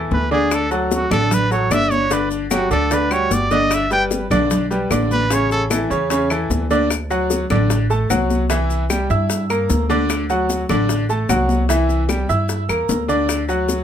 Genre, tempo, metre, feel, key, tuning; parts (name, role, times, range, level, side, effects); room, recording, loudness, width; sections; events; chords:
latin, Cuban son and guajira; 150 BPM; 4/4; straight; D major; A4 = 439 Hz
bright grand piano; arpeggios; 0.0-13.8 s; C#3 to E6; -19 LUFS; equal
upright bass; bass; 0.0-13.8 s; G1 to G2; -22 LUFS; right 1 dB
clear trumpet; melody; 0.1-5.6 s; D4 to G5; -19 LUFS; right 2 dB
bongos; percussion; 0.1-13.8 s; -28 LUFS; left 8 dB
congas; percussion; 0.1-13.8 s; -25 LUFS; left 2 dB
claves; percussion; 0.5-13.5 s; -28 LUFS; left 6 dB
maracas; percussion; 0.5-13.8 s; -30 LUFS; left 7 dB
light reverb; close, detailed microphones; -16 LUFS; side -9 dB against mid
0.0-6.9 A section; 6.9-13.8 B section
trumpet solo 0.0-6.9
0.0 Asus2; 0.5 D; 2.1 G5; 3.7 A9sus4; 5.3 A; 6.9 D; 8.5 C7; 10.1 D; 11.7 C7; 13.3 D